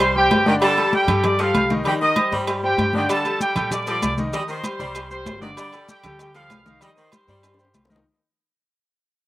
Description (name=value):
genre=latin, salsa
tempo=194 BPM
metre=4/4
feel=straight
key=unclear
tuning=A4 = 440 Hz
part: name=bright trumpet section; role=melody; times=0.0-7.9 s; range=G4 to Eb6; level=-22 LUFS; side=right 1 dB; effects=slapback echo
part: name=bright saxophone section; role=second line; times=0.0-8.0 s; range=Eb3 to G3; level=-26 LUFS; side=left 1 dB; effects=slapback echo
part: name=bright grand piano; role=accompaniment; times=0.0-8.0 s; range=D3 to Eb5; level=-25 LUFS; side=left 2 dB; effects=slapback echo
part: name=upright bass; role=bass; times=0.0-8.0 s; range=G1 to Bb2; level=-29 LUFS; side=equal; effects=none
part: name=agogo bells and timbales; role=percussion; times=0.0-7.9 s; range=none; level=-29 LUFS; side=right 4 dB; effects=slapback echo
part: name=congas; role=percussion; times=0.0-8.1 s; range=none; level=-25 LUFS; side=left 1 dB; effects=none
part: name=cowbell and bongos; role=percussion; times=0.0-8.0 s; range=none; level=-31 LUFS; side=left 2 dB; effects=slapback echo
part: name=maracas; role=percussion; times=3.1-8.1 s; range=none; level=-38 LUFS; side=left 3 dB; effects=none
room=little or no reverb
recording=recorded outdoors, with no room sound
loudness=-17 LUFS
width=side -16 dB against mid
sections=0.0-8.1 A section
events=fade-out 0.0-8.1; drum fill 7.4-8.1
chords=0.0 C5; 0.6 Gsus2; 1.9 Cm; 3.1 Gmadd9; 4.3 Cm; 5.6 Gsus2; 6.8 Cm